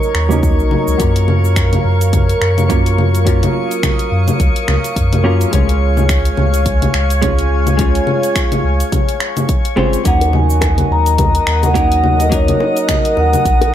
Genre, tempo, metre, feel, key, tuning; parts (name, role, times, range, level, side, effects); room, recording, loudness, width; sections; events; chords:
sunset chillout; 106 BPM; 4/4; swing 57% on 16ths; Eb minor; A4 = 440 Hz
vintage hollow-body jazz guitar; accompaniment; 0.0-13.7 s; Gb3 to Db5; -20 LUFS; moving between left 7 dB and right 5 dB; auto-pan, low-pass filter, ping-pong delay
lush unison pad; sustained chords; 0.0-13.7 s; Bb4 to Eb6; -21 LUFS; equal; chorus
deep house drum kit; drums; 0.0-13.7 s; cabasa, congas, finger snaps, hi-hat; -20 LUFS; left 2 dB
drifting glass-harmonics texture; texture; 0.0-13.7 s; Db5 to Eb6; -26 LUFS; left 2 dB; chorus, built-in reverb
warm sub bass; bass; 0.1-13.7 s; Ab1 to Gb2; -15 LUFS; equal
electronic kick drum; drums; 0.4-13.6 s; -17 LUFS; equal
vibraphone with soft mallets; melody; 10.1-13.7 s; Db5 to Bb5; -16 LUFS; equal; digital delay
bongos; percussion; 10.2-13.7 s; -23 LUFS; left 4 dB
light reverb; -11 LUFS; side -11 dB against mid
0.0-13.7 A section
filter sweep on hollow-body jazz guitar 0.0-13.7
0.0 Ebm7; 1.0 Gbmaj7; 5.5 Db; 10.1 Ebm7